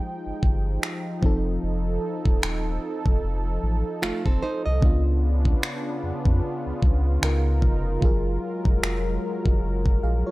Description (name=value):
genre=contemporary R&B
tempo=75 BPM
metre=4/4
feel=swing 58% on 16ths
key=unclear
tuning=A4 = 439 Hz
part: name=FM electric piano with auto-pan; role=accompaniment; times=0.0-10.3 s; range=Db3 to F5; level=-32 LUFS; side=equal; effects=none
part: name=warm analog pad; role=sustained chords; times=0.0-10.3 s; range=Db3 to G5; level=-30 LUFS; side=equal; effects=chorus
part: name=warm sub bass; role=bass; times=0.3-10.2 s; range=Eb1 to F2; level=-24 LUFS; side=equal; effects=none
part: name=smooth R&B drum kit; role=drums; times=0.4-10.0 s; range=finger snaps, kick drum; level=-22 LUFS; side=equal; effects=none
part: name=nylon-string guitar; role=arpeggios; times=4.0-5.0 s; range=A3 to Eb5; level=-30 LUFS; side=right 2 dB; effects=analog delay
room=little or no reverb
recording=dry, gritty hardware recording, transformer saturation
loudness=-21 LUFS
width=side -19 dB against mid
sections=0.0-10.3 A section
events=FM electric piano fill 10.0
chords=0.0 Fm9; 1.2 F7; 4.8 Db7b9; 7.2 Db13; 8.0 Gbmaj9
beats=0.03 0.82 | 1.62 2.42 3.23 4.03 | 4.83 5.62 6.42 7.22 | 8.03 8.82 9.62